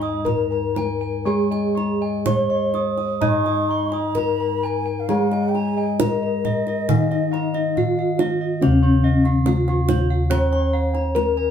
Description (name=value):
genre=Javanese gamelan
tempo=60-71 BPM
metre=4/4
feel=straight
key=Eb slendro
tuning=A4 = 441 Hz
part: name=gamelan-type bronze metallophone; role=melody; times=0.0-11.5 s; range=Db4-45c to Eb5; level=-23 LUFS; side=left 1 dB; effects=none
part: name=mellow bansuri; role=second line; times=0.0-7.9 s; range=Eb5 to Db6+29c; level=-29 LUFS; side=right 4 dB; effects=none
part: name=gamelan-type bronze metallophone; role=accompaniment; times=0.0-11.5 s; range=Db3-45c to Eb4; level=-24 LUFS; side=left 2 dB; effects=none
part: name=gamelan-type bossed gongs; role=arpeggios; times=0.0-11.5 s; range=Eb5 to Db6-45c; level=-31 LUFS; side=left 4 dB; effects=none
part: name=gamelan-type bronze metallophone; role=arpeggios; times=0.0-11.5 s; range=Db5-45c to Eb6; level=-31 LUFS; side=right 3 dB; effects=none
part: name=gamelan-type bossed gongs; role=bass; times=0.0-11.5 s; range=Eb2 to Bb4+25c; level=-25 LUFS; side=equal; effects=none
part: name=kendang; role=percussion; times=0.0-11.4 s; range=none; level=-25 LUFS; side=right 4 dB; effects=none
room=wet studio reverb, RT60 0.6 s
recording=heard from further back in the room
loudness=-18 LUFS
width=side -8 dB against mid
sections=0.0-8.6 A section; 8.6-11.5 B section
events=none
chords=none